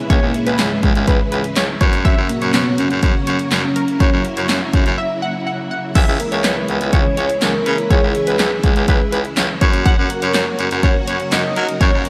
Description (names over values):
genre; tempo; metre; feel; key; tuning
synth-pop; 123 BPM; 4/4; straight; C# dorian; A4 = 440 Hz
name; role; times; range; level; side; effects
string machine, violins; sustained chords; 0.0-12.1 s; C#3 to F#4; -27 LUFS; equal; ensemble chorus
soft octave-layered synth lead; melody; 0.1-12.1 s; G#3 to D#5; -24 LUFS; equal; chorus, phaser, analog delay
funky polysynth comp; second line; 0.1-12.0 s; A#4 to F#5; -26 LUFS; equal; chorus, slapback echo, analog delay
breathy baritone saxophone; bass; 0.1-12.0 s; C#2 to F#3; -23 LUFS; equal; none
punchy analog drum machine; drums; 0.1-12.1 s; crash cymbal, handclaps, hi-hat, kick drum, snare drum; -19 LUFS; equal; none
room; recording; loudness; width
moderate lush hall reverb, RT60 1.9 s; big arena sound; -17 LUFS; mono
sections
0.0-6.0 A section; 6.0-12.1 A section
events
break 5.0-6.0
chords
0.0 C#m; 1.8 F#; 6.0 C#m; 9.6 F#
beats
| 0.10 0.59 1.08 1.56 | 2.05 2.54 3.03 3.52 | 4.00 4.49 4.98 5.47 | 5.95 6.44 6.93 7.42 | 7.91 8.39 8.88 9.37 | 9.86 10.34 10.83 11.32 | 11.81